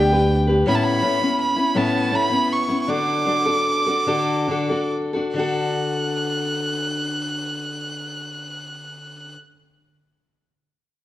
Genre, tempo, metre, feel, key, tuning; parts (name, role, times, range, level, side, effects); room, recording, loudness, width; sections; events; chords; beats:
acoustic folk duo or small band; 45-56 BPM (dotted quarters); 6/8; straight; D major; A4 = 441 Hz
clear violin; melody; 0.0-9.3 s; G5 to F#6; -23 LUFS; right 2 dB; slapback echo
picked steel-string acoustic guitar; accompaniment; 0.0-9.4 s; A2 to B4; -22 LUFS; left 2 dB
fingered electric bass; bass; 0.0-0.6 s; D2; -20 LUFS; right 1 dB
moderate recital hall reverb, RT60 1.5 s; worn, warbling old tape, cassette tape, warbly pitch drift; -19 LUFS; side -14 dB against mid
0.0-5.4 A section; 5.4-10.7 B section
slowing down 0.7-5.4
0.0 G; 0.7 Aadd9; 2.9 D
| 0.66 1.75 | 2.88 4.07 | 5.36 6.70 | 8.05 9.39